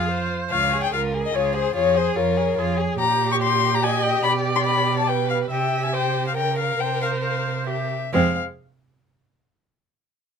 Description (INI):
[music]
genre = quick classical-period movement for string quartet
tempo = 128-147 BPM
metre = 3/4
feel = rubato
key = F minor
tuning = A4 = 440 Hz
[part]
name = dark violin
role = melody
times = 0.0-8.4 s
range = C5 to Db6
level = -22 LUFS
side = left 8 dB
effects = none
[part]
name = rich violin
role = second line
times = 0.0-8.4 s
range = C4 to Bb4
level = -29 LUFS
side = left 2 dB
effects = none
[part]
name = rich viola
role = accompaniment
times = 0.0-8.4 s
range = Ab3 to E5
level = -26 LUFS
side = right 4 dB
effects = none
[part]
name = rich cello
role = bass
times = 0.0-8.4 s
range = Db2 to Db3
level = -26 LUFS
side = right 6 dB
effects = none
[sound]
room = little or no reverb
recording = close, detailed microphones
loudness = -19 LUFS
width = side -6 dB against mid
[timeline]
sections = 0.0-8.1 A section; 8.1-9.5 B section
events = slowing down 4.9-8.1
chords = 0.0 Fm; 0.5 Db; 1.8 Db/F; 3.0 Bbsus2; 4.2 G/B; 5.5 C; 6.4 Bbm/Db; 6.8 C7sus4; 8.1 Fm